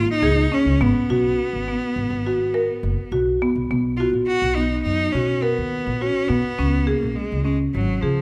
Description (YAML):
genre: contemporary instrumental, chamber music in an uneven meter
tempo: 104 BPM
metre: 5/4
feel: straight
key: B lydian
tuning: A4 = 440 Hz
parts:
  - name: clear cello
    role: melody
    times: 0.0-8.2 s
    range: E#3 to F#4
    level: -26 LUFS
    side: equal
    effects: none
  - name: marimba with medium mallets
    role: arpeggios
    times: 0.0-8.2 s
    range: B3 to A#4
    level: -24 LUFS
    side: equal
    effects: none
  - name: upright bass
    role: bass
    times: 0.0-8.2 s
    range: F#1 to C#3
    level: -26 LUFS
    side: equal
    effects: none
room: moderate scoring stage reverb, RT60 1.8 s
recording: none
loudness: -21 LUFS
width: mono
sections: 0.0-3.7 A section; 3.7-8.2 B section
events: none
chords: 0.0 A#m7 (rootless); 0.8 G#m9; 3.7 Bmaj7(no3); 6.6 C#5